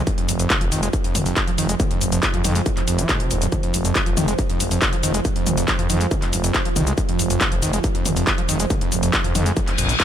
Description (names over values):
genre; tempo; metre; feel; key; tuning
driving peak-time techno; 139 BPM; 4/4; straight; F minor; A4 = 440 Hz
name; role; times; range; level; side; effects
screaming distorted acid line; riff; 0.0-9.9 s; F2 to Ab3; -26 LUFS; equal; distortion, chorus, sidechain pumping, ping-pong delay
growling FM bass; bass; 0.0-10.0 s; Eb1 to F2; -23 LUFS; equal; sidechain pumping
deep dark ambient pad; drone; 0.0-10.0 s; F3; -27 LUFS; right 4 dB; chorus, built-in reverb, sidechain pumping
electronic kick drum; drums; 0.1-10.0 s; none; -23 LUFS; equal; distortion
techno drum kit; drums; 0.1-10.0 s; handclaps, hi-hat, shaker, toms; -23 LUFS; left 1 dB; sidechain pumping on hats, sidechain pumping on toms, sidechain pumping on perc
reverse cymbal; sound effects; 9.7-10.0 s; none; -22 LUFS; left 4 dB; none
room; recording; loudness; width
little or no reverb; none; -18 LUFS; side -10 dB against mid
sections
0.0-10.0 A section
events
reverse cymbal 9.7-10.0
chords
0.0 F5